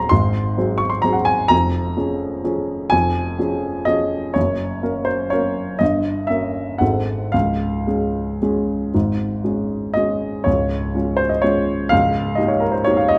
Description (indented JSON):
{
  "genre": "classical, piano waltz",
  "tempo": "109-132 BPM",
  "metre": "3/4",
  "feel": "rubato",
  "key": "Db major",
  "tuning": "A4 = 442 Hz",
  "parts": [
    { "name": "dark baby grand piano", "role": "solo", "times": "0.0-13.2 s", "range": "Db1 to Db6", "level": "-20 LUFS", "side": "equal", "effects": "none" }
  ],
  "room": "moderate recital hall reverb, RT60 1.5 s",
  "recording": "close, detailed microphones",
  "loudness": "-20 LUFS",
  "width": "mono",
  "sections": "0.0-10.5 A section; 10.5-13.2 A section",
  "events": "none",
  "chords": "0.0 Ab7/Eb; 1.5 Db/F; 4.4 Gb; 5.8 Gdim7; 6.8 Ab7b9; 7.3 Db; 11.9 Eb7/Db"
}